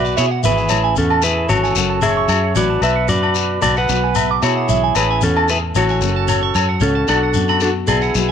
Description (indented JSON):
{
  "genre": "highlife guitar band",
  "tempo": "113 BPM",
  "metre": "4/4",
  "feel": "swing 53% on 16ths",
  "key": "A major",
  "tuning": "A4 = 441 Hz",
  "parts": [
    { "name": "clean electric guitar", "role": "melody", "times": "0.0-8.3 s", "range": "B3 to F#5", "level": "-19 LUFS", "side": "left 1 dB", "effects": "none" },
    { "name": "breathy trumpet", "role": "second line", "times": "0.0-8.3 s", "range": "E4 to C#5", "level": "-26 LUFS", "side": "right 13 dB", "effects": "none" },
    { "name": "nylon-string guitar", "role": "accompaniment", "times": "0.0-8.3 s", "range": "F#2 to G#4", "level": "-27 LUFS", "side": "left 12 dB", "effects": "none" },
    { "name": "electric guitar at the edge of break-up", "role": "arpeggios", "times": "0.0-8.3 s", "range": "C#5 to D6", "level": "-22 LUFS", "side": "right 13 dB", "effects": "phaser" },
    { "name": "fingered electric bass", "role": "bass", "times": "0.0-8.3 s", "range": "F#1 to B2", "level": "-20 LUFS", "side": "right 1 dB", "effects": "none" },
    { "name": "shekere", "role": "percussion", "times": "0.0-8.3 s", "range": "none", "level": "-23 LUFS", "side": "left 7 dB", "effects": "none" },
    { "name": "agogo bells", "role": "percussion", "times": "0.7-8.0 s", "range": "none", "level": "-23 LUFS", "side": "left 12 dB", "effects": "none" }
  ],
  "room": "moderate spring reverb, RT60 1.6 s, small room ambience",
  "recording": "1960s-style stereo with parts hard left and right",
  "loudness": "-14 LUFS",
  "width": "side -8 dB against mid",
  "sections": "0.0-8.3 A section",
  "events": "none",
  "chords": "0.0 Eadd9/B; 0.7 Amaj7; 1.8 F#m; 2.8 Bm; 3.9 Eadd9/B; 5.0 Amaj7; 6.0 F#m; 7.1 Bm",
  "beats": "0.17 | 0.71 1.24 1.77 2.30 | 2.83 3.36 3.89 4.42 | 4.96 5.49 6.02 6.55 | 7.08 7.62 8.15"
}